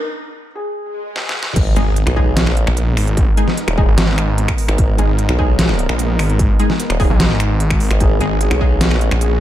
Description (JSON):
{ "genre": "heavy wobble dubstep", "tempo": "149 BPM", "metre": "4/4", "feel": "half-time", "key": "G# minor", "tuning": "A4 = 439 Hz", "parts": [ { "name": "felt-muted upright piano", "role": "melody", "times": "0.0-1.5, 8.0-9.4 s", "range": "G#4 to A#4", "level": "-25 LUFS", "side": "left 2 dB", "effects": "ping-pong delay" }, { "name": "swell and impact", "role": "sound effects", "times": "0.9-3.2 s", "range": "none", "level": "-26 LUFS", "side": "equal", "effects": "none" }, { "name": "dubstep drum kit", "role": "drums", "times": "1.2-9.3 s", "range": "crash cymbal, finger snaps, hi-hat, snare drum", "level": "-20 LUFS", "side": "equal", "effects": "none" }, { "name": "supersaw pad", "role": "sustained chords", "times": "1.6-9.4 s", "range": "G#3 to A#4", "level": "-26 LUFS", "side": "right 1 dB", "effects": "sidechain pumping, low-pass filter" }, { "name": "formant-sweep wobble bass", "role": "bass", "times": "1.6-9.1 s", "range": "D#1 to B1", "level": "-17 LUFS", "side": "equal", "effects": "chorus, overdrive" }, { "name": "electronic kick drum", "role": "drums", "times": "1.6-8.7 s", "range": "none", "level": "-16 LUFS", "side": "equal", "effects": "distortion" }, { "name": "orchestra-hit-like synth stab", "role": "stabs", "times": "1.8-8.7 s", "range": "G#3 to G#4", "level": "-23 LUFS", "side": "left 1 dB", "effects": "built-in reverb, ping-pong delay" }, { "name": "snarling distorted saw bass", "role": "bass", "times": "1.8-9.4 s", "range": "G#1 to B1", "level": "-16 LUFS", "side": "equal", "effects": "distortion, overdrive" } ], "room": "digital ambience", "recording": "dark, warm production, high-pass filter", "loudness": "-13 LUFS", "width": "side -12 dB against mid", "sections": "0.0-1.6 A section; 1.6-9.4 B section", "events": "break 0.0-1.6; build-up 0.0-1.6; filter sweep on felt piano 0.0-1.6; filter sweep 0.0-1.6; swell 0.9-1.6; drum fill 1.2-1.6; drop 1.6-9.4; impact 1.6-3.2", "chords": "0.0 G#sus2; 1.6 G#madd9" }